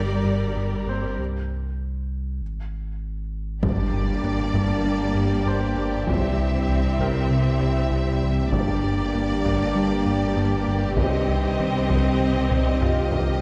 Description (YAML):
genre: cinematic, hybrid orchestral and electronic film score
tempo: 98 BPM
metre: 4/4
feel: straight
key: G minor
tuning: A4 = 440 Hz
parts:
  - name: warm symphonic violin section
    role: second line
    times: 0.0-13.4 s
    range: G4 to D5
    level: -36 LUFS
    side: equal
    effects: none
  - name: warm studio viola section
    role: accompaniment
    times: 0.0-13.4 s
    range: G3 to G4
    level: -35 LUFS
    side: equal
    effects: none
  - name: thumb-piano-like synth pluck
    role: arpeggios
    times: 0.0-13.3 s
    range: C3 to G4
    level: -37 LUFS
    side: equal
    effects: none
  - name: round analog bass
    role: riff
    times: 0.0-13.3 s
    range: C2 to G3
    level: -30 LUFS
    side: equal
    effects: none
  - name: dark symphonic double bass section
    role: bass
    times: 0.0-13.4 s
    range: G1 to C2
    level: -32 LUFS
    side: equal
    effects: none
  - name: rich symphonic cello section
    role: bass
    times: 0.0-13.4 s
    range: G2 to C3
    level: -32 LUFS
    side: equal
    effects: none
  - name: warm sub bass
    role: bass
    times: 0.0-13.4 s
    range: G1 to C2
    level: -31 LUFS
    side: equal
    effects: none
  - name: bright grand piano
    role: texture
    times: 0.0-13.4 s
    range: C4 to D6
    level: -39 LUFS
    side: equal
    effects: digital delay
  - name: warm symphonic violin section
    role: melody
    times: 3.6-13.4 s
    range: D5 to E5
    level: -34 LUFS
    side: equal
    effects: none
  - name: warm French horn section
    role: sustained chords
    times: 3.6-13.4 s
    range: Eb3 to E4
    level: -31 LUFS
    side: equal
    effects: none
  - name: warm trombone section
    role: sustained chords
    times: 3.6-13.3 s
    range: G2 to G3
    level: -34 LUFS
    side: equal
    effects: none
  - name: taiko ensemble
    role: drums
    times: 3.6-13.4 s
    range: none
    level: -31 LUFS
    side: equal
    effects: none
  - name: impact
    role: sound effects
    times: 3.6-6.1 s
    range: none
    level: -36 LUFS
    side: equal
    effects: none
room: moderate scoring stage reverb, RT60 1.6 s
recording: none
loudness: -23 LUFS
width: mono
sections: 0.0-3.6 A section; 3.6-13.4 A section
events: break 1.2-3.6; drum fill 2.7-3.6, 12.5-13.4; impact 3.6-6.1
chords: 0.0 Gm; 1.2 N.C.; 3.6 Gm; 6.1 C; 8.5 Gm; 11.0 Cm